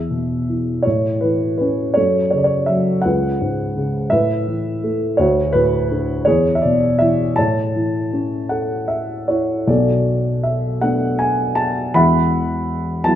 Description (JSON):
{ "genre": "classical, lyrical solo piano", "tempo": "51-56 BPM (dotted quarters)", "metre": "6/8", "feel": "rubato", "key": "A major", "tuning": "A4 = 440 Hz", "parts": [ { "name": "dark upright piano", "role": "solo", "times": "0.0-13.2 s", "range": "E1 to B5", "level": "-16 LUFS", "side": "equal", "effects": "none" } ], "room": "moderate recital hall reverb, RT60 1.8 s", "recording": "recorded in a church or concert hall", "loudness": "-16 LUFS", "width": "side -11 dB against mid", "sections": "0.0-9.7 A section; 9.7-13.2 B section", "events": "none", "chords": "0.0 E; 0.9 A; 2.0 F#m; 3.0 C#5; 4.1 Asus2; 5.2 D; 6.3 E; 7.4 A; 9.7 Bm7; 11.9 Esus2" }